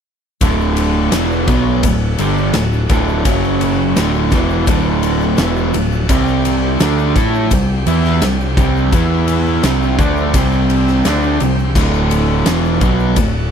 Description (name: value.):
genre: classic rock.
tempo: 85 BPM.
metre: 4/4.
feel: straight.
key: D mixolydian.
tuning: A4 = 440 Hz.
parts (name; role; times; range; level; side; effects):
bright tonewheel organ; sustained chords; 0.4-13.5 s; G3 to C6; -28 LUFS; left 1 dB; slow rotary speaker, overdrive.
cranked stack guitar; riff; 0.4-13.5 s; D2 to A4; -19 LUFS; left 13 dB; overdrive.
crunchy overdriven guitar; riff; 0.4-13.5 s; D2 to A4; -18 LUFS; right 12 dB; none.
growling picked electric bass; bass; 0.4-13.5 s; D1 to A2; -18 LUFS; left 1 dB; overdrive.
huge arena drum kit; drums; 0.4-13.3 s; crash cymbal, kick drum, ride cymbal, snare drum; -18 LUFS; left 1 dB; none.
egg shaker; percussion; 0.4-13.3 s; none; -36 LUFS; left 15 dB; none.
room: little or no reverb.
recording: none.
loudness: -12 LUFS.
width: side -7 dB against mid.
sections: 0.4-13.5 A section.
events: none.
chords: 0.4 D; 3.3 F#5; 4.0 D; 6.1 C5; 8.9 E5; 9.6 C5; 11.8 D.